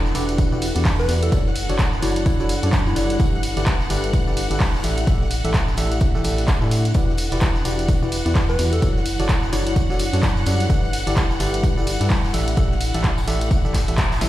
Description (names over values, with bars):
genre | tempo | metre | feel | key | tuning
piano house | 128 BPM | 4/4 | swing 59% on 16ths | unclear | A4 = 439 Hz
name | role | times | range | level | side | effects
clear studio string section | sustained chords | 0.0-14.3 s | F#5 to F#6 | -31 LUFS | left 1 dB | sidechain pumping
organ-like FM bass | bass | 0.0-14.3 s | E1 to A2 | -23 LUFS | equal | sidechain pumping
granular cloud pad | texture | 0.0-14.3 s | D4 to F#5 | -30 LUFS | equal | built-in reverb, sidechain pumping
barking FM electric piano | riff | 0.1-14.3 s | E3 to E5 | -26 LUFS | equal | chorus, cassette tape, sidechain pumping, ping-pong delay
compact cocktail drum kit | drums | 0.1-14.3 s | hi-hat, snare drum, tambourine | -40 LUFS | left 3 dB | sidechain pumping on hats, high-pass filter on hats, high-pass filter on snare, sidechain pumping on perc, high-pass filter on perc, high-pass filter on room
punchy analog drum machine | drums | 0.1-14.3 s | handclaps, hi-hat, ride cymbal, snare drum, tambourine | -28 LUFS | right 1 dB | none
electronic kick drum | drums | 0.4-14.1 s | none | -21 LUFS | equal | none
soft struck synth lead | melody | 1.0-3.3, 8.5-9.7 s | E4 to B4 | -28 LUFS | left 1 dB | chorus, ping-pong delay
room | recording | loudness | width
light reverb, small room ambience | played on a big sound system in a bare room, stone room reverb | -17 LUFS | side -14 dB against mid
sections
0.0-14.3 A section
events
band accent 14.0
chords
0.0 Em9; 1.3 Dmaj7/F#; 3.2 G69; 4.8 A7sus4; 6.9 Em9; 8.8 Dmaj7/F#; 10.7 G69; 12.3 A7sus4